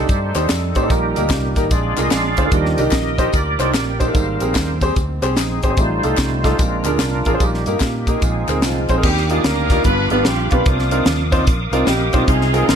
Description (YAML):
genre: uptempo gospel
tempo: 148 BPM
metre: 4/4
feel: swing 64% on 8ths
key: Eb major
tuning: A4 = 439 Hz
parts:
  - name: bright upright piano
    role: accompaniment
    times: 0.0-12.8 s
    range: G2 to C5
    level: -21 LUFS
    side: right 1 dB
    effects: none
  - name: bright tonewheel organ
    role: sustained chords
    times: 0.0-12.8 s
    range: F3 to Eb6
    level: -23 LUFS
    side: right 2 dB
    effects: fast rotary speaker, overdrive, chorus vibrato
  - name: mellow French horn section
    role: sustained chords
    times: 0.0-9.0 s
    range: Eb3 to D5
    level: -32 LUFS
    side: equal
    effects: none
  - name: fingered electric bass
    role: bass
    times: 0.0-12.8 s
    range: G1 to Bb2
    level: -22 LUFS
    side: equal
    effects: none
  - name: crisp fusion drum kit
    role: drums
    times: 0.1-12.8 s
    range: crash cymbal, hi-hat, kick drum, snare drum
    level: -19 LUFS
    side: equal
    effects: none
  - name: tambourine and handclaps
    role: percussion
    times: 0.1-9.0 s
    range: none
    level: -30 LUFS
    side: left 6 dB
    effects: none
  - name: dark horn section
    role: melody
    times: 8.6-12.8 s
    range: F3 to B4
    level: -20 LUFS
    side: equal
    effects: none
room: light reverb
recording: lossy compression artefacts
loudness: -15 LUFS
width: side -8 dB against mid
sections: 0.0-9.0 A section; 9.0-12.8 B section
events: tonewheel organ solo 0.0-9.0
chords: 0.0 F13; 0.9 Eb/Bb; 1.7 Bb7; 2.5 Ebmaj7; 4.2 Abmaj9; 5.8 F9/A; 6.6 Bb7; 7.4 Eb/Bb; 8.2 Bb9sus4; 9.0 Ebmaj9; 9.8 G7; 10.7 Cm11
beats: 0.09 0.49 | 0.90 1.31 1.71 2.12 | 2.52 2.93 3.34 3.74 | 4.15 4.56 4.96 5.37 | 5.78 6.18 6.59 7.00 | 7.41 7.82 8.22 8.63 | 9.04 9.44 9.85 10.25 | 10.66 11.06 11.47 11.88 | 12.28 12.69